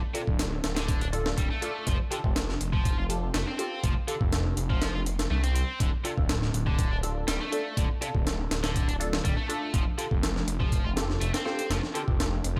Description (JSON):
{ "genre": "breakbeat, breaks", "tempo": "122 BPM", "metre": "4/4", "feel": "straight", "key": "D minor pentatonic", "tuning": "A4 = 439 Hz", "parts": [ { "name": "tight distorted guitar", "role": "riff", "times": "0.1-12.6 s", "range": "C3 to F4", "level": "-38 LUFS", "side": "equal", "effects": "distortion, overdrive, delay" }, { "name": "filtered dub chord stab", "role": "stabs", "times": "0.1-12.1 s", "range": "D4 to A4", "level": "-38 LUFS", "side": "equal", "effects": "phaser, lush chorus, delay" }, { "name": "breakbeat sampler-style drum kit", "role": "drums", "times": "0.1-12.6 s", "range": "hi-hat, kick drum, snare drum", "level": "-31 LUFS", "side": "equal", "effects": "none" }, { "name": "phased detuned saw bass", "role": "bass", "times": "0.3-12.6 s", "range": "D1 to C2", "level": "-32 LUFS", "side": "equal", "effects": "phaser" } ], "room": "digital ambience", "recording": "none", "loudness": "-28 LUFS", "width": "mono", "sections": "0.0-12.6 A section", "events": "none", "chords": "0.0 Dm; 1.9 Fadd9; 5.8 Dm; 9.7 Fadd9" }